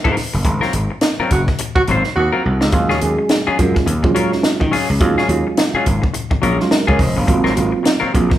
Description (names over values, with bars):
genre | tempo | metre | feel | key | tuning
funk | 105 BPM | 4/4 | swing 60% on 16ths | Eb dorian | A4 = 441 Hz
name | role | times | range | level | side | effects
semi-hollow electric guitar | accompaniment | 0.0-8.3 s | Gb3 to C5 | -21 LUFS | left 3 dB | none
gritty slap bass | bass | 0.1-8.3 s | F1 to Eb3 | -19 LUFS | equal | overdrive
compact cocktail drum kit | drums | 0.1-8.4 s | hi-hat, kick drum, snare drum | -18 LUFS | equal | none
breathy tenor saxophone | second line | 1.3-2.6 s | Gb4 | -19 LUFS | right 2 dB | none
mellow tine electric piano | stabs | 2.7-8.4 s | F3 to F5 | -19 LUFS | right 4 dB | phaser
room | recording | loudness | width
moderate large studio reverb, RT60 0.9 s | band playing live in one room | -14 LUFS | side -12 dB against mid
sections
0.0-8.4 A section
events
band accent 0.5-2.7; drum fill 2.2-2.7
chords
0.0 Ab13; 2.7 Ebm11; 7.3 Ab13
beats
| 0.45 1.02 1.59 2.16 | 2.73 3.30 3.87 4.44 | 5.01 5.58 6.14 6.71 | 7.28 7.85